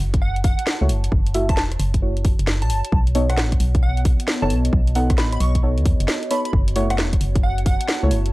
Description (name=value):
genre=UK garage, two-step garage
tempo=133 BPM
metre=4/4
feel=swing 65% on 16ths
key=F# dorian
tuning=A4 = 443 Hz
part: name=organ-like FM bass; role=bass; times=0.0-8.3 s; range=E1 to D#2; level=-20 LUFS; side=equal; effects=none
part: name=warbly tape-like pad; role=texture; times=0.8-8.3 s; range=B3 to A5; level=-32 LUFS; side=equal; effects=chorus, built-in reverb, sidechain pumping
part: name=electronic kick drum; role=drums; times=0.1-7.8 s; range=none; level=-20 LUFS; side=equal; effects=none
part: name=house drum kit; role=drums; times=0.1-8.3 s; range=hi-hat, rim click, snare drum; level=-26 LUFS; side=equal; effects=none
part: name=plucky unison lead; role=melody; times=0.2-8.0 s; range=F#5 to C#6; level=-29 LUFS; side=right 1 dB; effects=analog chorus, analog delay
part: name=deep mellow chord stab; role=stabs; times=0.8-8.2 s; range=A3 to F#5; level=-25 LUFS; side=equal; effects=chorus
room=little or no reverb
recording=dry, gritty hardware recording, transformer saturation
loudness=-17 LUFS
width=side -20 dB against mid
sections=0.0-8.3 A section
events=none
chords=0.0 F#m7; 2.9 B9; 6.5 F#m7